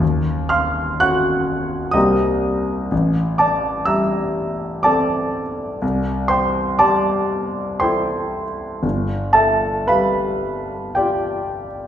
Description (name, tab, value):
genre	classical, impressionist solo piano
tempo	61 BPM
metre	3/4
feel	uneven beats, rubato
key	unclear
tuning	A4 = 438 Hz
part	clear concert grand piano	solo	0.0-11.9 s	G1 to Gb6	-17 LUFS	equal	none
room	wet recital hall reverb, RT60 1.7 s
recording	heard from further back in the room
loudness	-17 LUFS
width	side -10 dB against mid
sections	0.0-11.9 A section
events	none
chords	0.0 Ebm7; 2.0 Cm7; 2.9 Am7; 5.8 C69; 8.8 G9